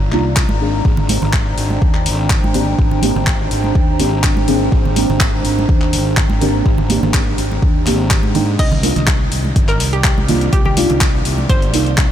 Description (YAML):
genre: deep house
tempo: 124 BPM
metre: 4/4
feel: swing 53% on 16ths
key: unclear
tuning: A4 = 440 Hz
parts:
  - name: deep mellow chord stab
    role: stabs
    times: 0.0-11.9 s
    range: Bb3 to Ab4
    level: -21 LUFS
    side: equal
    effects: chorus, phaser, sidechain pumping, ping-pong delay
  - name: fuzz fingered electric bass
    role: bass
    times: 0.0-12.1 s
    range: G1 to Ab2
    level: -19 LUFS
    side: equal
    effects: overdrive, sidechain pumping
  - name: warbly tape-like pad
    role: texture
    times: 0.0-12.1 s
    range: Eb3 to Bb5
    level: -23 LUFS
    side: right 2 dB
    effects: chorus, built-in reverb, sidechain pumping
  - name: deep house drum kit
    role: drums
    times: 0.1-12.1 s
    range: crash cymbal, handclaps, hi-hat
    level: -22 LUFS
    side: left 2 dB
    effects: overdrive
  - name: electronic kick drum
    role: drums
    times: 0.4-12.1 s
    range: none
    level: -16 LUFS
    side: equal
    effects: overdrive
  - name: congas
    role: percussion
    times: 0.5-11.5 s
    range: none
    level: -25 LUFS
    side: right 4 dB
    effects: none
  - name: hollow square pluck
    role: melody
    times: 8.6-12.0 s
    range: G4 to Eb5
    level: -23 LUFS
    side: right 1 dB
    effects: chorus, cassette tape, analog delay
room: light reverb, digital ambience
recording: none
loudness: -12 LUFS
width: side -10 dB against mid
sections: 0.0-12.1 A section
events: filter sweep on synth stab 0.0-12.1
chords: 0.0 Cm11; 0.6 Abmaj9#11; 8.6 Cm11